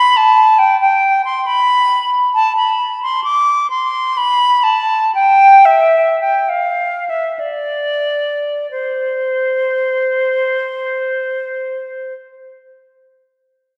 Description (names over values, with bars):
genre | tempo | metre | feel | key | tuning
classical, baroque-style fantasia for unaccompanied flute | 44-72 BPM | 3/4 | rubato | C major | A4 = 438 Hz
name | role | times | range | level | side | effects
silver concert flute | solo | 0.0-12.1 s | C5 to D6 | -14 LUFS | equal | none
room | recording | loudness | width
wet concert hall reverb, RT60 2.1 s | heard from further back in the room, nothing above 10.5 kHz | -14 LUFS | mono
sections
0.0-8.7 A section; 8.7-12.6 B section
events
slowing down 1.0-8.7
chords
none